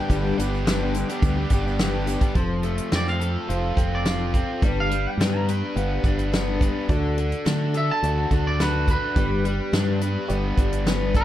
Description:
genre	folk rock and heartland rock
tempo	106 BPM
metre	4/4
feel	straight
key	G mixolydian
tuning	A4 = 440 Hz
part	twangy electric guitar	melody	0.0-11.2 s	B4 to Bb5	-28 LUFS	right 1 dB	none
part	picked steel-string acoustic guitar	accompaniment	0.0-11.2 s	G2 to B4	-29 LUFS	left 6 dB	none
part	accordion	sustained chords	0.0-2.3 s	B4 to D6	-38 LUFS	right 2 dB	none
part	overdriven electric guitar	riff	0.0-11.2 s	G2 to B4	-28 LUFS	right 1 dB	none
part	dark baby grand piano	accompaniment	0.1-11.2 s	D4 to F5	-36 LUFS	equal	none
part	fingered electric bass	bass	0.1-11.2 s	F1 to D3	-25 LUFS	right 1 dB	none
part	soft brush drum kit	drums	0.1-11.2 s	hi-hat, kick drum, snare drum	-24 LUFS	equal	none
part	tube shaker	percussion	0.1-2.2 s	none	-44 LUFS	right 7 dB	none
room	light reverb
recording	dark, warm production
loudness	-20 LUFS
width	side -12 dB against mid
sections	0.0-2.4 A section; 2.4-11.2 B section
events	clean electric guitar solo 2.4-11.2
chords	0.0 G; 2.4 F; 4.6 G; 6.9 D; 9.2 G

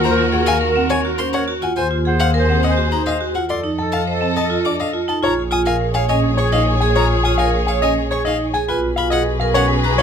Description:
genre	classical, minimalist pattern music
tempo	104 BPM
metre	3/4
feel	straight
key	unclear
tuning	A4 = 440 Hz
part	clear baby grand piano	melody	0.0-10.0 s	B4 to A5	-22 LUFS	left 5 dB	none
part	clear clarinet	second line	0.0-10.0 s	F#4 to C5	-26 LUFS	right 4 dB	none
part	rich studio string section	sustained chords	0.0-10.0 s	Gb4 to Eb5	-24 LUFS	left 4 dB	none
part	clear violin	arpeggios	0.0-10.0 s	E#5 to D#6	-24 LUFS	left 4 dB	none
part	vibraphone with hard mallets	arpeggios	0.0-10.0 s	C4 to C#5	-21 LUFS	right 5 dB	none
part	rich symphonic double bass section	bass	0.0-10.0 s	A#1 to F2	-20 LUFS	equal	none
room	little or no reverb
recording	close, detailed microphones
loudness	-15 LUFS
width	side -7 dB against mid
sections	0.0-5.2 A section; 5.2-10.0 B section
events	none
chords	0.0 Gbmaj9/Eb; 1.8 Ab13/Eb; 3.5 F7; 5.2 A#m7; 8.7 G#m11/B

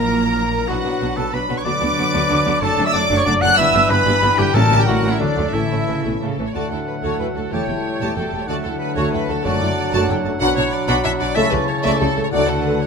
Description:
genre	classical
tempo	187 BPM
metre	3/4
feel	straight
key	D major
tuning	A4 = 441 Hz
part	warm symphonic violin section	melody	0.0-12.9 s	D5 to F#6	-24 LUFS	left 2 dB	none
part	clear oboe	second line	0.0-12.9 s	D4 to A5	-26 LUFS	right 2 dB	none
part	dark clarinet	second line	0.0-12.9 s	D4 to F#5	-28 LUFS	left 1 dB	none
part	large flute ensemble	second line	0.0-12.9 s	D5 to F#6	-27 LUFS	equal	none
part	rich symphonic violin section	second line	0.0-12.9 s	A3 to F#5	-26 LUFS	left 3 dB	none
part	warm symphonic viola section	accompaniment	0.0-12.9 s	E3 to A4	-25 LUFS	right 2 dB	none
part	mellow French horn section	sustained chords	0.0-12.4 s	E3 to F#4	-28 LUFS	left 4 dB	none
part	concert harp	arpeggios	0.0-12.9 s	F#2 to D5	-26 LUFS	left 10 dB	none
part	warm trumpet	stabs	0.0-6.4 s	A4 to D5	-26 LUFS	right 3 dB	none
part	dark symphonic cello section	bass	0.0-12.9 s	D2 to D3	-27 LUFS	right 4 dB	none
part	rich symphonic double bass section	bass	0.0-12.9 s	E1 to D2	-26 LUFS	right 4 dB	none
part	timpani	percussion	4.5-5.0, 9.4-9.9 s	F#2 to A2	-25 LUFS	equal	none
part	warm trombone section	sustained chords	6.5-12.4 s	F#2 to A3	-31 LUFS	right 5 dB	none
part	mellow bassoon	accompaniment	6.6-12.9 s	C#3 to A3	-27 LUFS	right 4 dB	none
room	moderate scoring stage reverb, RT60 1.6 s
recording	close, detailed microphones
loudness	-16 LUFS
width	side -5 dB against mid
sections	0.0-6.5 A section; 6.5-12.9 B section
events	none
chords	0.0 F#7/A#; 0.7 Bm; 1.7 Bm/D; 2.6 D/F#; 3.6 Em7/G; 4.5 A7b9; 5.2 D; 5.5 A; 6.5 D; 7.5 A7/E; 8.5 D; 9.5 D/F#; 10.4 Bm; 11.4 A/C#; 12.3 D

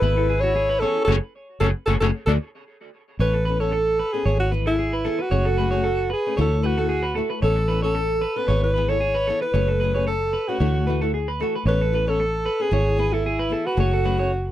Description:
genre	highlife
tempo	113 BPM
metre	4/4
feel	swing 53% on 16ths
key	A major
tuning	A4 = 440 Hz
part	breathy alto saxophone	melody	0.0-14.5 s	E4 to C#5	-23 LUFS	equal	none
part	warm trumpet	second line	0.0-2.3 s	C#4 to E4	-31 LUFS	left 12 dB	none
part	flamenco guitar	accompaniment	0.0-14.3 s	E3 to A4	-29 LUFS	left 10 dB	none
part	electric guitar at the edge of break-up	arpeggios	0.0-14.3 s	F#4 to D5	-27 LUFS	right 4 dB	wide subtle chorus, tape echo
part	fingered electric bass	bass	0.0-14.5 s	F#1 to D2	-23 LUFS	equal	none
room	light reverb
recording	dry, close 1970s-style studio recording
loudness	-19 LUFS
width	side -13 dB against mid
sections	0.0-3.2 A section; 3.2-14.5 B section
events	band accent 1.1-3.2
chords	0.0 E/G#; 1.1 F#madd9; 2.1 D; 3.2 Aadd9; 4.3 E/G#; 5.3 F#madd9; 6.4 Dadd9; 7.4 Aadd9; 8.5 E/G#; 9.6 F#madd9; 10.6 Dadd9; 11.7 Aadd9; 12.7 E/G#; 13.8 F#madd9

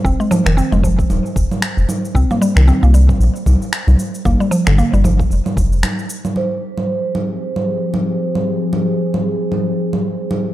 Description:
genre	organic downtempo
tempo	114 BPM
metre	4/4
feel	swing 58% on 16ths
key	F minor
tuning	A4 = 440 Hz
part	mallet-like synth pluck	arpeggios	0.0-5.2 s	D3 to C4	-18 LUFS	equal	chorus, cassette tape, tape echo
part	round analog bass	bass	0.0-5.8 s	Eb1 to C2	-12 LUFS	equal	sidechain pumping
part	electronic kick drum	drums	0.0-5.7 s	none	-20 LUFS	equal	overdrive
part	quartz singing bowl	texture	0.0-10.5 s	C5	-27 LUFS	right 4 dB	stereo widening
part	electronic cabasa, congas and finger snaps	drums	0.1-10.4 s	none	-21 LUFS	right 2 dB	overdrive
part	warbly tape-like pad	sustained chords	7.0-10.5 s	F3 to Ab4	-20 LUFS	left 2 dB	chorus, built-in reverb, sidechain pumping
room	little or no reverb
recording	dry, gritty hardware recording, transformer saturation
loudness	-14 LUFS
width	side -14 dB against mid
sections	0.0-6.4 A section; 6.4-10.5 B section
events	break 5.8-6.4; filter sweep on ambient pad 6.4-10.5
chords	0.0 F5; 2.1 C7(no3); 4.3 Gm7; 6.4 Fm

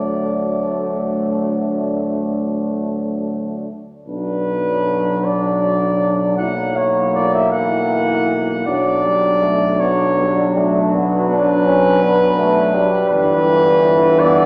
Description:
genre	classical, hymn-like piece for brass band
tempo	45-56 BPM (dotted quarters)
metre	12/8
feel	rubato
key	D major, B minor from 4.1 s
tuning	A4 = 437 Hz
part	mellow flugelhorn	melody	0.0-14.5 s	B4 to F#5	-21 LUFS	equal	none
part	dark French horn section	second line	0.0-14.5 s	D4 to E4	-25 LUFS	equal	none
part	clear euphonium	accompaniment	0.0-14.5 s	E3 to D4	-23 LUFS	equal	none
part	mellow trombone section	accompaniment	0.0-14.5 s	E3 to A#3	-24 LUFS	equal	none
part	warm tuba	bass	0.0-14.5 s	G1 to D2	-28 LUFS	equal	none
room	wet concert hall reverb, RT60 2.3 s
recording	none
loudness	-17 LUFS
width	mono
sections	0.0-4.1 A section; 4.1-14.5 B section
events	none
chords	0.0 D; 4.1 Bm; 6.4 F#7/B; 8.7 Bm; 13.1 Em7/G

